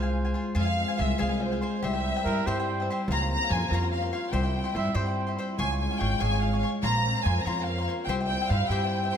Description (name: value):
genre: mexican folk, mariachi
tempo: 96 BPM (dotted quarters)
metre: 6/8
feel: straight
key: F harmonic minor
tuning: A4 = 439 Hz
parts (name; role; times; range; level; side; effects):
- warm symphonic violin section; melody; 0.0-9.2 s; C5 to Bb5; -30 LUFS; equal; none
- mellow trumpet; second line; 0.0-5.5 s; Bb4 to E5; -34 LUFS; right 5 dB; slapback echo
- cavaquinho; accompaniment; 0.0-9.2 s; F4 to Db6; -34 LUFS; left 4 dB; none
- concert harp; arpeggios; 0.0-9.2 s; G3 to Db6; -32 LUFS; left 2 dB; none
- upright bass; bass; 0.0-9.1 s; Ab1 to G2; -28 LUFS; right 1 dB; none
- dark studio violin section; sustained chords; 0.6-9.2 s; G3 to Db5; -39 LUFS; equal; none
room: moderate recital hall reverb, RT60 1.5 s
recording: none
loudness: -25 LUFS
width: side -8 dB against mid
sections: 0.6-9.2 A section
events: none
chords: 0.0 Fm; 1.8 C; 3.1 Bbmadd9/Db; 4.3 C; 5.6 Db; 6.8 Bbmadd9; 8.1 C